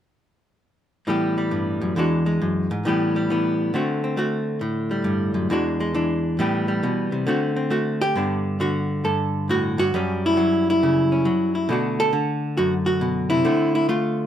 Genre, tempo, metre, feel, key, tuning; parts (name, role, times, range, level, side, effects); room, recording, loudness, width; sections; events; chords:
solo jazz; 136 BPM; 4/4; swing 66% on 8ths; G major; A4 = 439 Hz
archtop guitar, miked and amplified; solo; 1.1-14.3 s; E2 to A4; -20 LUFS; equal
moderate studio reverb, RT60 0.7 s; minimal, uncompressed stereo recording; -20 LUFS; side -10 dB against mid
1.1-8.2 A section; 8.2-14.3 B section
1.1 Asus2; 2.0 E9; 2.8 Asus2; 3.7 D7; 4.6 A7sus4; 5.5 E9; 6.4 Am9; 7.3 D7; 8.2 Gmaj9; 9.9 F#5; 11.7 Bm7; 13.5 Dm7